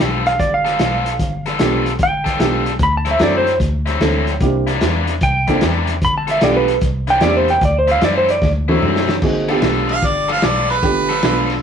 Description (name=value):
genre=electric blues shuffle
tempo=150 BPM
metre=4/4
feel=swing 66% on 8ths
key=G mixolydian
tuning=A4 = 442 Hz
part: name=clean lap steel guitar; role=melody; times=0.0-8.5 s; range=B4 to B5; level=-17 LUFS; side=right 1 dB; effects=slapback echo
part: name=dark grand piano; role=accompaniment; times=0.0-11.6 s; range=A3 to A4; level=-20 LUFS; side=right 2 dB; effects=none
part: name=overdriven electric guitar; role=riff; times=0.0-11.5 s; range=C3 to A4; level=-22 LUFS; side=left 4 dB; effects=none
part: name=vintage muted fingered electric bass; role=bass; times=0.0-11.6 s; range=G1 to F#2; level=-21 LUFS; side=equal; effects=none
part: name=vintage drum kit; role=drums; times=0.3-11.6 s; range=crash cymbal, hi-hat, kick drum, ride cymbal, snare drum, toms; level=-21 LUFS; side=equal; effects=none
part: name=clear harmonica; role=second line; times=9.9-11.5 s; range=B4 to F5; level=-18 LUFS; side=right 2 dB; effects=overdrive
room=moderate studio reverb, RT60 0.6 s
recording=rough rehearsal-room recording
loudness=-14 LUFS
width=side -7 dB against mid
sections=0.0-9.2 A section; 9.2-11.6 A section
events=electric slide guitar solo 0.0-9.2; drum fill 8.4-9.2; harmonica solo 9.2-11.6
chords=0.0 G9; 2.8 D9; 4.4 C9; 6.0 G9; 6.8 C9; 7.6 D9; 9.2 G9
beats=0.00 0.40 0.80 | 1.20 1.60 2.00 2.40 | 2.81 3.21 3.61 4.01 | 4.41 4.81 5.21 5.61 | 6.01 6.42 6.82 7.22 | 7.62 8.02 8.42 8.82 | 9.22 9.63 10.03 10.43 | 10.83 11.23